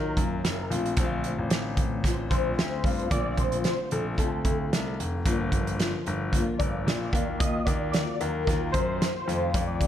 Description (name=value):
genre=indie pop, bedroom pop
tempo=112 BPM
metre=4/4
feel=swing 55% on 16ths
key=Bb major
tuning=A4 = 438 Hz
part: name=warbly lo-fi synth keys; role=melody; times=0.0-9.9 s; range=A4 to Eb5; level=-31 LUFS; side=left 1 dB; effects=ensemble chorus, slapback echo
part: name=fingerpicked steel-string acoustic guitar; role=accompaniment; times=0.0-9.9 s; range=F2 to F4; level=-32 LUFS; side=left 2 dB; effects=ensemble chorus, vibrato effect
part: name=clear concert grand piano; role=bass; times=0.0-9.9 s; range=F1 to Eb3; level=-31 LUFS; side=left 1 dB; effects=none
part: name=loose indie drum kit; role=drums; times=0.2-9.9 s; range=hi-hat, kick drum, snare drum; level=-28 LUFS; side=right 1 dB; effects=none
room=small room ambience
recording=none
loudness=-24 LUFS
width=side -10 dB against mid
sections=0.0-3.1 A section; 3.1-9.9 B section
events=none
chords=0.0 Ebmadd9; 0.7 Bbmaj9; 5.3 Gm7; 7.1 Ebmadd9; 9.3 F7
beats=0.43 | 0.97 1.50 2.04 2.58 | 3.11 3.65 4.18 4.72 | 5.25 5.79 6.33 6.86 | 7.40 7.93 8.47 9.00 | 9.54